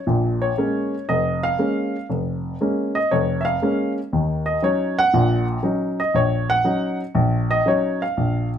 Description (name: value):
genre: solo jazz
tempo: 119 BPM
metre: 4/4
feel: swing 69% on 8ths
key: unclear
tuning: A4 = 441 Hz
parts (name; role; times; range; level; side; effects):
- warm baby grand piano; solo; 0.0-8.6 s; F1 to Gb5; -19 LUFS; equal; none
room: moderate studio ambience, RT60 0.5 s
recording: minimal, uncompressed stereo recording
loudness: -19 LUFS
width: side -9 dB against mid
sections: 0.0-8.6 A section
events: grand piano solo 0.0-8.6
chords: 0.1 Bbm7; 4.1 Ebm7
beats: | 0.07 0.57 1.08 1.58 | 2.09 2.60 3.10 3.61 | 4.11 4.62 5.12 5.63 | 6.13 6.64 7.14 7.65 | 8.16